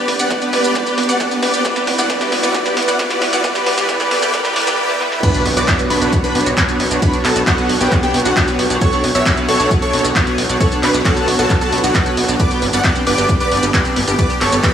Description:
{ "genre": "uplifting trance", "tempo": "134 BPM", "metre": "4/4", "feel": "straight", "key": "B minor", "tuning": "A4 = 439 Hz", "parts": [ { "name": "dense compressed supersaw", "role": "melody", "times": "0.0-14.7 s", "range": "B3 to F#5", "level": "-18 LUFS", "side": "right 1 dB", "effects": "vintage 12-bit sampler grit, sidechain pumping, diffuse ambient delay" }, { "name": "liquid acid bass", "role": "arpeggios", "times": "0.0-14.7 s", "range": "B3 to G4", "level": "-24 LUFS", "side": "left 1 dB", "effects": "analog chorus, sidechain pumping, diffuse ambient delay" }, { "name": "riser, swell and impact", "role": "sound effects", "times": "0.7-7.0 s", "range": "none", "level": "-28 LUFS", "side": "equal", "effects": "none" }, { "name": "punchy analog drum machine", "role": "drums", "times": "0.1-14.7 s", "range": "crash cymbal, handclaps, hi-hat, shaker, snare drum", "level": "-20 LUFS", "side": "equal", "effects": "high-pass filter on snare, small room ambience, sidechain pumping on hats, high-pass filter on hats, sidechain pumping on perc, high-pass filter on perc, sidechain pumping on cymbals, high-pass filter on cymbals" }, { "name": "supersaw pad", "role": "sustained chords", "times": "0.2-14.7 s", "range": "G3 to D5", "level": "-21 LUFS", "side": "right 1 dB", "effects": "sidechain pumping" }, { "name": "electronic kick drum", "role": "drums", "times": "0.3-14.7 s", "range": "none", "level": "-18 LUFS", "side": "equal", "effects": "high-pass filter on kick, small room ambience" }, { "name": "plucky unison lead", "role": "second line", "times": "5.2-14.7 s", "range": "F#5 to F#6", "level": "-23 LUFS", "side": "left 1 dB", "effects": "lush chorus, sidechain pumping, diffuse ambient delay" }, { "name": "gritty driven synth bass", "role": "bass", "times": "5.5-14.6 s", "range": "G1 to B1", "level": "-21 LUFS", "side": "equal", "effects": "tube saturation, sidechain pumping" } ], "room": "wet cathedral reverb, RT60 5.5 s", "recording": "dreamy mix soaked in reverb, high-pass filter", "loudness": "-13 LUFS", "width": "side -9 dB against mid", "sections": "0.0-5.2 A section; 5.2-14.7 B section", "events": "build-up 0.0-5.2; drum fill 0.0-4.8, 4.9-5.2; swell 4.3-5.2; drop 5.2-14.7; impact 5.2-7.0", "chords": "0.0 G; 1.6 Emadd9; 5.2 Bmadd9; 12.4 G" }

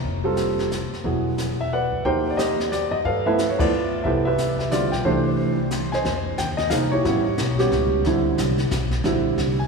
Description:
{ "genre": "jazz piano trio", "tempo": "180 BPM", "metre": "3/4", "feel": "swing 62% on 8ths", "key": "C major", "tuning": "A4 = 440 Hz", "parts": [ { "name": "upright bass", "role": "bass", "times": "0.0-9.7 s", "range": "E1 to G2", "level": "-26 LUFS", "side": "left 1 dB", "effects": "none" }, { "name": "jazz brush drum kit", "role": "drums", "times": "0.0-9.7 s", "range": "brushed snare drum, hi-hat, kick drum, ride cymbal, snare drum", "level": "-30 LUFS", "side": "left 2 dB", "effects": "none" }, { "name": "warm concert grand piano", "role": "melody", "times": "0.2-9.7 s", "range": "D3 to Ab5", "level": "-21 LUFS", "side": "right 2 dB", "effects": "none" } ], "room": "wet cathedral reverb, RT60 5.1 s", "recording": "recorded in a church or concert hall", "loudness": "-20 LUFS", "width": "side -4 dB against mid", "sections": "0.0-6.0 A section; 6.0-9.7 B section", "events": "band accent 3.5", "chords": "0.0 Fadd9; 1.0 E9; 2.0 Eb6; 3.0 G13; 4.0 Cmaj9; 6.0 Fm9; 7.0 A7; 8.0 Dsus2; 9.0 Bb69" }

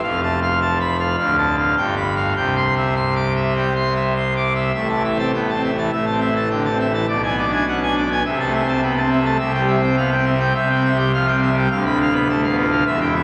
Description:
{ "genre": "classical, organ toccata", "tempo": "104 BPM", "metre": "4/4", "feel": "straight", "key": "C major, A minor from 4.8 s", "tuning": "A4 = 440 Hz", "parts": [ { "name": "pipe organ, full organ", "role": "solo", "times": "0.0-13.2 s", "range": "D1 to D6", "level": "-19 LUFS", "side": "equal", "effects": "none" } ], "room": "wet cathedral reverb, RT60 5.0 s", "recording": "vinyl crackle", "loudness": "-19 LUFS", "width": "mono", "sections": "0.0-4.8 A section; 4.8-13.2 B section", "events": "none", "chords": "0.0 F; 1.2 Dm; 1.8 G7; 2.4 C; 4.8 Am; 7.1 G#dim/B; 8.2 Am/C; 9.4 C; 11.7 Bdim/D" }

